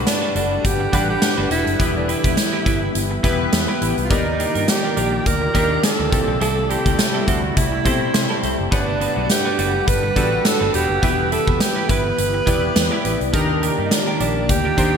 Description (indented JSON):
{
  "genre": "1980s-style pop",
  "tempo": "104 BPM",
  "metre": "4/4",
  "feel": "swing 55% on 16ths",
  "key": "G major",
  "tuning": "A4 = 440 Hz",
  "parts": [
    { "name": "chorused retro synth keys", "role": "accompaniment", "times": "0.0-15.0 s", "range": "G2 to F#5", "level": "-24 LUFS", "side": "left 2 dB", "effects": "tremolo" },
    { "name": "glassy FM pad", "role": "sustained chords", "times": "0.0-15.0 s", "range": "C3 to F#5", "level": "-27 LUFS", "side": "left 2 dB", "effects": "ensemble chorus, built-in reverb" },
    { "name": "twelve-string electric guitar", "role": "riff", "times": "0.0-15.0 s", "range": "G3 to B4", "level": "-27 LUFS", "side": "right 2 dB", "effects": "wide subtle chorus" },
    { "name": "vintage muted fingered electric bass", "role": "bass", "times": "0.0-15.0 s", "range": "E1 to C3", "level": "-25 LUFS", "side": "equal", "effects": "none" },
    { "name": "clear alto saxophone", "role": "melody", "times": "0.1-15.0 s", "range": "D4 to B4", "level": "-23 LUFS", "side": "right 3 dB", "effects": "ping-pong delay" },
    { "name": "big rock drum kit", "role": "drums", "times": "0.1-14.9 s", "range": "hi-hat, kick drum, snare drum", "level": "-21 LUFS", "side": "equal", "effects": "gated reverb" }
  ],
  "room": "moderate lush hall reverb, RT60 2.1 s",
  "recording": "bright 1980s-style digital production",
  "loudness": "-16 LUFS",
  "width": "side -7 dB against mid",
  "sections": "0.0-15.0 A section",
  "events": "none",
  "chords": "0.0 Gmaj7; 1.8 Em; 4.1 Ebmaj7; 6.1 C6; 8.7 Gmaj7; 11.0 Em; 13.3 Ebmaj7"
}